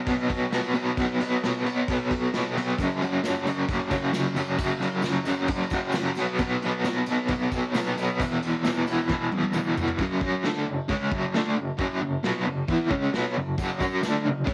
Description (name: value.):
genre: garage rock duo or trio.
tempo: 133 BPM.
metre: 4/4.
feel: straight.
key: F# minor from 10.0 s.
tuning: A4 = 440 Hz.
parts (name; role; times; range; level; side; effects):
raw garage guitar; riff; 0.0-14.5 s; E2 to F#4; -27 LUFS; equal; overdrive, tremolo.
vintage brush drum kit; drums; 0.1-14.5 s; crash cymbal, kick drum, snare drum, toms; -35 LUFS; equal; cassette tape.
tambourine; percussion; 2.8-9.9, 13.6-14.1 s; none; -52 LUFS; equal; none.
room: light reverb.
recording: home recording on cassette.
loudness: -26 LUFS.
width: mono.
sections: 0.0-10.0 A section; 10.0-14.5 B section.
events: drum fill 9.1-10.0.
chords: 0.0 B5; 2.8 F#5; 6.2 B5; 8.2 E5; 10.0 F#m.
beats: 0.08 0.53 | 0.98 1.43 1.88 2.33 | 2.79 3.24 3.69 4.14 | 4.59 5.04 5.50 5.95 | 6.40 6.85 7.30 7.75 | 8.20 8.65 9.10 9.54 | 9.99 10.44 10.89 11.34 | 11.79 12.24 12.69 13.13 | 13.58 14.03 14.48.